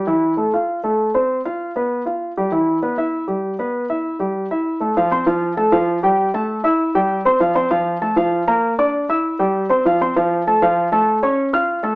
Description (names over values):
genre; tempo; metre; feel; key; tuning
jazz; 196 BPM; 4/4; straight; unclear; A4 = 435 Hz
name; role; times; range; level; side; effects
dark grand piano; solo; 0.0-12.0 s; E3 to E#6; -16 LUFS; equal; none
room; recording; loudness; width
moderate studio reverb, RT60 0.7 s; band playing live in one room, small speaker sound; -16 LUFS; side -26 dB against mid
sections
0.0-5.0 A section; 5.0-12.0 B section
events
none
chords
0.1 Fmaj7/E; 0.7 Am; 1.3 F5; 1.9 G7; 2.5 Em; 4.4 Emadd11/G; 5.0 F; 6.2 A5; 7.4 Fadd11; 8.6 Bb; 9.2 C; 9.9 F; 11.1 Aaug